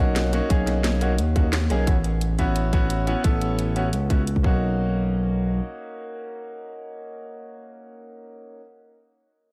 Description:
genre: liquid drum and bass.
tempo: 175 BPM.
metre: 4/4.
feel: straight.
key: B major.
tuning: A4 = 441 Hz.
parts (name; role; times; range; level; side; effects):
bright concert grand piano; accompaniment; 0.0-8.6 s; A#3 to A4; -31 LUFS; equal; diffuse ambient delay.
smooth gliding synth bass; bass; 0.0-5.6 s; A1 to D#2; -25 LUFS; equal; none.
drum and bass drum kit; drums; 0.2-4.3 s; hi-hat, snare drum; -32 LUFS; equal; overdrive, studio reverb.
electronic kick drum; drums; 0.5-4.5 s; none; -23 LUFS; equal; overdrive, studio reverb.
room: light reverb.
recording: none.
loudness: -23 LUFS.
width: mono.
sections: 0.0-4.6 A section; 4.6-7.4 B section.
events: none.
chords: 0.0 Bmaj9; 1.9 A69; 4.4 Bmaj9.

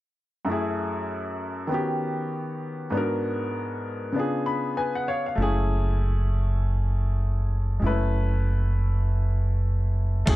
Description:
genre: hip hop, jazz-hop.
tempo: 98 BPM.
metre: 4/4.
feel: swing 59% on 16ths.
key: F# minor.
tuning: A4 = 440 Hz.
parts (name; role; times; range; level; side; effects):
clear upright piano; accompaniment; 0.4-10.4 s; F#2 to B5; -28 LUFS; left 1 dB; none.
deep dub fingered electric bass; bass; 5.4-10.4 s; F#1; -22 LUFS; equal; none.
dusty soul sampler-style drum kit; drums; 10.3-10.4 s; crash cymbal, hi-hat, kick drum; -19 LUFS; equal; none.
room: light reverb.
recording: dark, warm production.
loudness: -23 LUFS.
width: side -17 dB against mid.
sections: 0.5-10.3 A section.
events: upright piano fill 4.2-5.4.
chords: 0.5 F#m9; 1.7 D#7alt; 2.9 G#m7b5; 4.2 C#7b9; 5.4 F#m9.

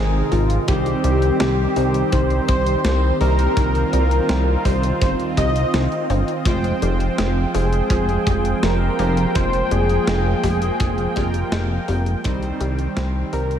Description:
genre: synthwave.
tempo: 83 BPM.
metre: 4/4.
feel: straight.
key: F minor.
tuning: A4 = 440 Hz.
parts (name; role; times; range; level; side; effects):
wide unison lead; melody; 0.0-13.6 s; F4 to Eb5; -24 LUFS; left 1 dB; ping-pong delay.
soft synth bell; second line; 0.0-13.6 s; F4 to Eb5; -30 LUFS; left 1 dB; none.
brassy analog pad; sustained chords; 0.0-13.6 s; C3 to G5; -25 LUFS; right 2 dB; chorus, sidechain pumping.
analog pluck; arpeggios; 0.0-13.6 s; Eb3 to C4; -31 LUFS; left 3 dB; none.
analog synth brass; stabs; 0.0-13.6 s; G3 to G5; -28 LUFS; right 1 dB; chorus, cassette tape, analog delay.
chorused synth bass; bass; 0.0-13.6 s; F1 to C2; -20 LUFS; equal; sidechain pumping.
clean 12-bit digital drum machine; drums; 0.3-13.6 s; hi-hat, snare drum; -28 LUFS; equal; none.
kick drum; drums; 0.7-12.4 s; none; -23 LUFS; equal; none.
room: moderate plate reverb, RT60 3.1 s.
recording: dreamy mix soaked in reverb.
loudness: -17 LUFS.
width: side -9 dB against mid.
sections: 0.0-13.6 A section.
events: fade-out 10.3-13.6.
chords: 0.0 Ab; 0.7 Cm; 6.5 Fmadd9; 12.2 Cm.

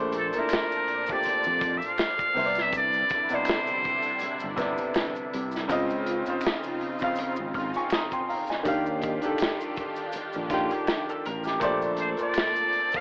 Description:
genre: R&B, neo-soul.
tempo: 81 BPM.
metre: 4/4.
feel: swing 56% on 16ths.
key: unclear.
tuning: A4 = 439 Hz.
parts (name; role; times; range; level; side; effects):
bright baby grand piano; accompaniment; 0.0-13.0 s; Bb2 to F6; -29 LUFS; equal; plate reverb.
lush unison pad; sustained chords; 0.3-13.0 s; Bb2 to A5; -35 LUFS; equal; chorus, phaser, plate reverb.
sustaining fretless electric bass; bass; 0.0-12.1 s; G1 to F2; -33 LUFS; equal; analog chorus.
crunchy breakbeat drum kit; drums; 0.1-13.0 s; hi-hat, kick drum, snare drum; -30 LUFS; equal; none.
maracas and finger snaps; percussion; 0.1-13.0 s; none; -42 LUFS; equal; none.
trumpet with straight mute; melody; 0.2-4.8, 12.0-13.0 s; A4 to F5; -25 LUFS; equal; none.
electric guitar through a small old amp; second line; 10.5-11.8 s; F4 to Bb4; -31 LUFS; equal; plate reverb.
room: moderate studio reverb, RT60 0.5 s.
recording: worn, warbling old tape, cassette tape, warbly pitch drift, AM radio sound.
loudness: -24 LUFS.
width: side -40 dB against mid.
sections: 0.0-13.0 A section.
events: none.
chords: 0.0 Bbmaj9; 2.4 Cmaj9; 5.7 Dbmaj9; 8.7 Ebmaj9; 11.6 Bbmaj9.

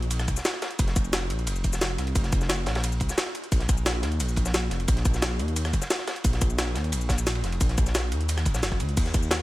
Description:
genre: liquid drum and bass.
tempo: 176 BPM.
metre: 4/4.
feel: straight.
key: unclear.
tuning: A4 = 444 Hz.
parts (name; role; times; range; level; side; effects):
dark detuned saw bass; bass; 0.0-9.4 s; F1 to Eb2; -27 LUFS; equal; none.
jungle sampler-style drum kit; drums; 0.0-9.4 s; crash cymbal, hi-hat, ride cymbal, rim click, shaker, snare drum; -29 LUFS; equal; none.
crunchy breakbeat drum kit; drums; 0.1-9.4 s; ride cymbal, snare drum; -34 LUFS; equal; high-pass filter on cymbals, high-pass filter on snare, high-pass filter on room.
electronic kick drum; drums; 0.3-9.2 s; none; -24 LUFS; equal; none.
room: little or no reverb.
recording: none.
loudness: -23 LUFS.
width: side -17 dB against mid.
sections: 0.0-9.4 A section.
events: none.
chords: none.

